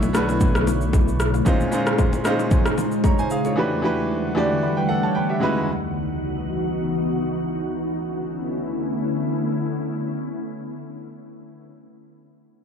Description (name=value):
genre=amapiano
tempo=114 BPM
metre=4/4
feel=swing 55% on 16ths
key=B minor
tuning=A4 = 441 Hz
part: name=clear grand piano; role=accompaniment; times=0.0-5.7 s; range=A#2 to B5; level=-22 LUFS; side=right 1 dB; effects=none
part: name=glassy FM pad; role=sustained chords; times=0.0-11.0 s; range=C#2 to F#5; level=-25 LUFS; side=left 1 dB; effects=ensemble chorus, built-in reverb
part: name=fat analog bass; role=bass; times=0.0-1.4 s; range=B1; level=-23 LUFS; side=equal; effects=none
part: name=deep house drum kit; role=drums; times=0.0-3.6 s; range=kick drum, rim click, shaker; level=-21 LUFS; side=equal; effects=overdrive
part: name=bongos and congas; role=percussion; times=0.0-3.6 s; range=none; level=-30 LUFS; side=left 6 dB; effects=none
room=light reverb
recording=dark, warm production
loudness=-20 LUFS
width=side -7 dB against mid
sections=0.0-7.8 A section; 7.8-12.0 B section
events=none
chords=0.0 Bm11; 1.5 A#m11; 3.6 Em11; 5.4 C#m11; 7.8 Bm11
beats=0.41 0.93 | 1.46 1.99 2.51 3.04 | 3.57 4.09 4.62 5.14 | 5.67 6.20 6.72 7.25 | 7.78 8.30 8.83 9.36 | 9.88 10.41 10.93